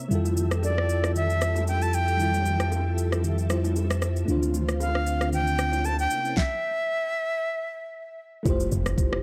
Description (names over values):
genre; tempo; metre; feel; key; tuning
amapiano; 115 BPM; 4/4; swing 55% on 16ths; unclear; A4 = 439 Hz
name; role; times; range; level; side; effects
bell-like FM electric piano; accompaniment; 0.0-9.2 s; G3 to C5; -33 LUFS; equal; chorus, phaser
ensemble organ-string; sustained chords; 0.0-6.4 s; C3 to E5; -36 LUFS; equal; ensemble chorus, sidechain pumping
punchy sub bass; bass; 0.1-6.1 s; D2 to F2; -28 LUFS; equal; none
smooth R&B drum kit; drums; 0.1-9.2 s; kick drum, rim click, shaker, snare drum; -32 LUFS; equal; none
congas and bongos; percussion; 0.1-6.0 s; none; -38 LUFS; equal; none
breathy bright jazz flute; melody; 0.6-8.2 s; D5 to A5; -30 LUFS; equal; digital delay
woody log drum bass; bass; 8.5-9.2 s; F1; -30 LUFS; equal; none
impact; sound effects; 8.5-9.2 s; none; -35 LUFS; equal; none
room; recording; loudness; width
light reverb, digital ambience; dark, warm production; -25 LUFS; mono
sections
0.0-8.5 A section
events
stop 6.4-8.5; impact 8.5-9.2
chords
0.1 Fmaj9; 4.3 Dm7; 6.1 C7b9; 8.5 Fmaj9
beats
| 0.11 0.63 1.15 1.67 | 2.19 2.72 3.24 3.76 | 4.28 4.80 5.33 5.85 | 6.37 6.89 7.41 7.93 | 8.46 8.98